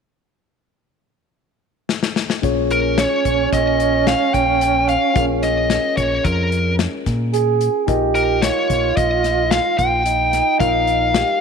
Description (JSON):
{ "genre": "progressive instrumental, band music in an uneven meter", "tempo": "110 BPM", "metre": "5/4", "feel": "straight", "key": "Bb dorian", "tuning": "A4 = 441 Hz", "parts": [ { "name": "warm soul drum kit", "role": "drums", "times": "1.9-11.3 s", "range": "hi-hat, kick drum, snare drum", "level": "-22 LUFS", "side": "left 5 dB", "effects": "none" }, { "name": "trombone with bucket mute", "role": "second line", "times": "2.4-11.4 s", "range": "Db4 to Ab4", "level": "-21 LUFS", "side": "right 12 dB", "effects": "none" }, { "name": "mellow tine electric piano", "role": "accompaniment", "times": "2.4-11.4 s", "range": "Db4 to Eb5", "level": "-25 LUFS", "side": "left 15 dB", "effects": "none" }, { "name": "deep dub fingered electric bass", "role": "bass", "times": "2.4-11.2 s", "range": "Bb1 to Bb2", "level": "-23 LUFS", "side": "equal", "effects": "none" }, { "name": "biting lead guitar", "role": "melody", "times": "2.7-11.4 s", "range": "Bb4 to G5", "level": "-18 LUFS", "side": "left 2 dB", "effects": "overdrive" } ], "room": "light reverb, small room ambience", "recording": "1960s-style stereo with parts hard left and right", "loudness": "-15 LUFS", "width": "side -6 dB against mid", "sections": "0.0-2.4 A section; 2.4-11.4 B section", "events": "drum fill 1.9-2.4", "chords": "0.0 N.C.; 2.4 Bbm7; 7.9 Ebsus2/Bb" }